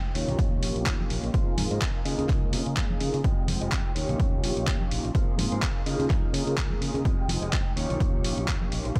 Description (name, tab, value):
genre	filtered disco house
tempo	126 BPM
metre	4/4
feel	swing 56% on 16ths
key	unclear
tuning	A4 = 439 Hz
part	mellow synth brass	accompaniment	0.0-9.0 s	Ab3 to G5	-35 LUFS	equal	chorus, phaser, cassette tape, sidechain pumping, low-pass filter
part	clear chamber violin section	sustained chords	0.0-9.0 s	Ab3 to Eb6	-46 LUFS	equal	sidechain pumping, low-pass filter
part	electric guitar at the edge of break-up	riff	0.0-9.0 s	F4 to Eb5	-40 LUFS	equal	sidechain pumping, low-pass filter
part	maracas and congas	percussion	0.0-9.0 s	none	-38 LUFS	equal	sidechain pumping on perc, low-pass filter on perc
part	modern bright fingered electric bass	bass	0.2-9.0 s	F1 to Db3	-34 LUFS	equal	sidechain pumping, low-pass filter
part	dusty soul sampler-style drum kit	drums	0.2-9.0 s	handclaps, hi-hat	-36 LUFS	equal	sidechain pumping on hats, studio reverb, sidechain pumping on cymbals
part	electronic kick drum	drums	0.4-9.0 s	none	-29 LUFS	equal	studio reverb
room	little or no reverb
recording	none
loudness	-26 LUFS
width	mono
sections	0.0-9.0 A section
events	filter sweep 0.0-9.0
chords	0.1 Eb9; 1.3 Ab69; 2.1 Db69; 3.2 Fm9; 4.0 Eb9; 5.1 Ab69; 5.9 Db69; 7.1 Fm9; 7.8 Eb9